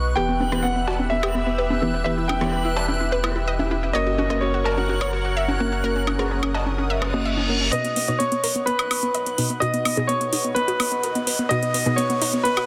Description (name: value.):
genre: progressive house.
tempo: 127 BPM.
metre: 4/4.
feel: straight.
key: B major.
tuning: A4 = 440 Hz.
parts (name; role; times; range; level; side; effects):
lush unison pad; sustained chords; 0.0-12.7 s; G4 to E6; -34 LUFS; equal; chorus, phaser.
deep mellow chord stab; stabs; 0.0-12.7 s; B2 to D#5; -30 LUFS; equal; chorus, delay.
saturated sub bass; bass; 0.0-12.7 s; E1 to B1; -30 LUFS; equal; tube saturation, high-pass filter.
backwards swelling texture; texture; 0.0-7.7 s; F#6; -38 LUFS; equal; built-in reverb.
clear grand piano; melody; 0.2-12.7 s; A#4 to G5; -28 LUFS; equal; low-pass filter, delay.
analog pluck; arpeggios; 0.2-12.7 s; B3 to E5; -30 LUFS; equal; chorus, delay.
electronic congas, rim click and cowbell; percussion; 0.4-7.5 s; none; -32 LUFS; equal; soft clipping on snare.
electronic woodblock and hi-hat; drums; 1.2-12.7 s; none; -29 LUFS; equal; none.
reverse cymbal and riser; sound effects; 7.0-12.7 s; none; -34 LUFS; equal; none.
soft synth bell; second line; 7.7-12.7 s; B5 to D#6; -31 LUFS; equal; chorus, low-pass filter, delay.
room: light reverb.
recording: dense, heavily limited modern master.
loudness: -22 LUFS.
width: mono.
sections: 0.0-7.7 A section; 7.7-12.7 B section.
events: reverse cymbal 7.0-7.7; build-up 7.7-12.7.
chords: 0.2 Em; 3.9 F#; 7.7 B.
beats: | 0.17 0.64 1.11 1.59 | 2.06 2.53 3.00 3.48 | 3.95 4.42 4.89 5.37 | 5.84 6.31 6.78 7.25 | 7.73 8.20 8.67 9.14 | 9.62 10.09 10.56 11.04 | 11.51 11.98 12.45.